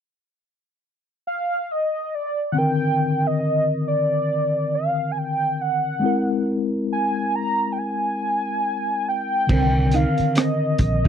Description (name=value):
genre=R&B, neo-soul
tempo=69 BPM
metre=4/4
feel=swing 59% on 16ths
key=C minor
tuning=A4 = 440 Hz
part: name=warm velvety synth lead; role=melody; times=1.3-11.1 s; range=D5 to Bb5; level=-22 LUFS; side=right 1 dB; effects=chorus, slapback echo
part: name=mellow tine electric piano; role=accompaniment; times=2.5-11.1 s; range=D3 to Bb4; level=-23 LUFS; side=left 3 dB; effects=medium stereo tremolo
part: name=electric guitar through a small old amp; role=second line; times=9.5-11.1 s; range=C4 to Eb4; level=-26 LUFS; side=right 8 dB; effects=none
part: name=vintage muted fingered electric bass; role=bass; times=9.5-11.1 s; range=Bb1 to C2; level=-21 LUFS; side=right 1 dB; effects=none
part: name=crunchy breakbeat drum kit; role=drums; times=9.5-11.1 s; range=crash cymbal, hi-hat, kick drum, rim click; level=-22 LUFS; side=right 1 dB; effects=none
room=little or no reverb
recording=dry, close 1970s-style studio recording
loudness=-20 LUFS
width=side -8 dB against mid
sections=0.0-2.5 A section; 2.5-9.5 B section; 9.5-11.1 C section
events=none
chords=0.0 N.C.; 2.5 Cm9; 6.0 Caug7; 9.5 Cm9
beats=0.80 1.67 | 2.54 3.41 4.28 5.15 | 6.02 6.89 7.76 8.63 | 9.50 10.37